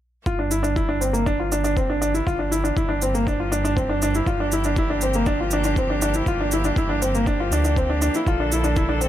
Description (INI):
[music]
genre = piano and strings electronica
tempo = 120 BPM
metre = 4/4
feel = straight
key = G dorian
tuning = A4 = 438 Hz
[part]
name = bright string quartet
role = sustained chords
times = 0.3-9.1 s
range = D3 to A4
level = -33 LUFS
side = left 2 dB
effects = sidechain pumping
[part]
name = clear grand piano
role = riff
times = 0.3-9.1 s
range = Bb3 to F4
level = -22 LUFS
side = equal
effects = tape echo
[part]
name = round analog bass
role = bass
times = 0.3-9.1 s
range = G1 to D2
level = -25 LUFS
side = equal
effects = sidechain pumping
[part]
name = electronic kick drum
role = drums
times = 0.3-8.9 s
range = none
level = -25 LUFS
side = equal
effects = overdrive
[part]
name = shaker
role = drums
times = 0.3-9.1 s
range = none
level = -31 LUFS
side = right 3 dB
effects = overdrive
[sound]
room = small room ambience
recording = faint mains hum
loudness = -19 LUFS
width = side -12 dB against mid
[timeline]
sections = 0.3-9.1 A section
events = fade-in on string quartet 0.3-9.1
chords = 0.3 Gm7; 8.3 Bbmaj7